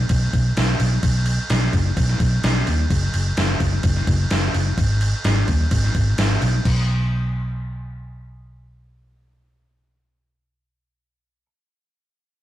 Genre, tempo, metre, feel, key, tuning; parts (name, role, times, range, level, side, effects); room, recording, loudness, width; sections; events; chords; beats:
rock, shoegaze and dream pop; 128 BPM; 4/4; straight; B major; A4 = 438 Hz
vintage muted fingered electric bass; bass; 0.0-11.5 s; F#1 to D#2; -20 LUFS; equal
gated 80s digital drum machine; drums; 0.1-6.8 s; crash cymbal, kick drum, snare drum; -22 LUFS; equal; gated reverb, gated reverb snare
light reverb; rough rehearsal-room recording, warm saturation; -17 LUFS; side -14 dB against mid
0.0-6.6 A section; 6.6-10.4 B section
0.10 0.57 | 1.04 1.50 1.97 2.44 | 2.90 3.37 3.84 4.31 | 4.77 5.24 5.71 6.18 | 6.65 7.12 7.59 8.06 | 8.53 9.00 9.47 9.94